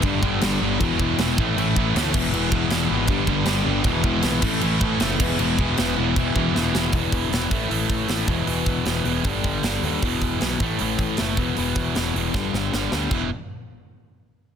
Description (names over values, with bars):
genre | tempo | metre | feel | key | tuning
punk rock | 156 BPM | 4/4 | straight | unclear | A4 = 440 Hz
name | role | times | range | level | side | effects
distorted electric guitar | riff | 0.0-13.3 s | E2 to A3 | -26 LUFS | left 11 dB | distortion
distorted electric guitar | riff | 0.0-13.3 s | E2 to A3 | -26 LUFS | right 13 dB | overdrive
sludgy distorted guitar | riff | 0.0-6.9 s | G2 to E4 | -27 LUFS | equal | overdrive
fuzz picked electric bass | bass | 0.0-13.3 s | E1 to D#2 | -27 LUFS | equal | overdrive
tight metal drum kit | drums | 0.0-13.2 s | crash cymbal, hi-hat, kick drum, snare drum | -25 LUFS | equal | none
room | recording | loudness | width
light reverb | dense, heavily limited modern master | -20 LUFS | side -8 dB against mid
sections
0.0-6.9 A section; 6.9-13.1 B section; 13.1-14.6 C section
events
drum fill 6.5-6.9, 12.4-13.1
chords
0.0 G; 0.8 E; 1.4 A; 2.1 E; 3.1 G; 3.9 E; 4.4 A; 5.2 E; 6.9 E5; 7.5 A5; 8.3 E5; 9.3 G5; 10.0 E5; 10.6 A5; 11.4 E5; 12.4 G5; 13.1 E5